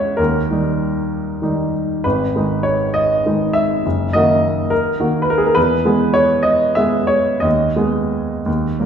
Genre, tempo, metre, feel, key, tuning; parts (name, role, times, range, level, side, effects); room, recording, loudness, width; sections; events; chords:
classical, romantic character piece for solo piano; 58-71 BPM (dotted quarters); 6/8; rubato; G# minor; A4 = 440 Hz
clear baby grand piano; solo; 0.0-8.9 s; F#1 to F#5; -14 LUFS; equal
wet recital hall reverb, RT60 1.4 s; heard from further back in the room; -14 LUFS; side -8 dB against mid
0.0-8.9 A section
0.2 D#; 2.0 G#m; 3.8 D#m/F#; 5.6 E; 7.4 G#m/D#